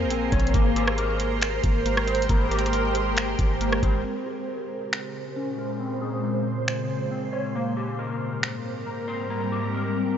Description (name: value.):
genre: hip hop, atmospheric cloud-rap.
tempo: 137 BPM.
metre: 4/4.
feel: half-time.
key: Bb dorian.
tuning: A4 = 439 Hz.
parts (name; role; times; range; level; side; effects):
ethereal airy pad; sustained chords; 0.0-10.2 s; Ab2 to C5; -27 LUFS; right 2 dB; ensemble chorus, built-in reverb, phaser, sidechain pumping, low-pass filter.
mellow electric guitar; arpeggios; 0.0-10.2 s; Bb3 to Db5; -31 LUFS; left 5 dB; ensemble chorus, low-pass filter, digital delay.
warm 808-style bass; bass; 0.0-4.0 s; Ab1 to Bb1; -26 LUFS; equal; none.
booming analog drum machine; drums; 0.1-8.5 s; finger snaps, hi-hat, kick drum, rim click; -26 LUFS; equal; none.
room: light reverb, digital ambience.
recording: nothing above 7.6 kHz.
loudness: -23 LUFS.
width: side -9 dB against mid.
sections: 0.0-4.0 A section; 4.0-10.2 B section.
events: filter sweep 4.0-10.2.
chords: 0.0 Bbm9; 0.5 Abmaj9; 4.0 Bbm9; 7.5 Abmaj9.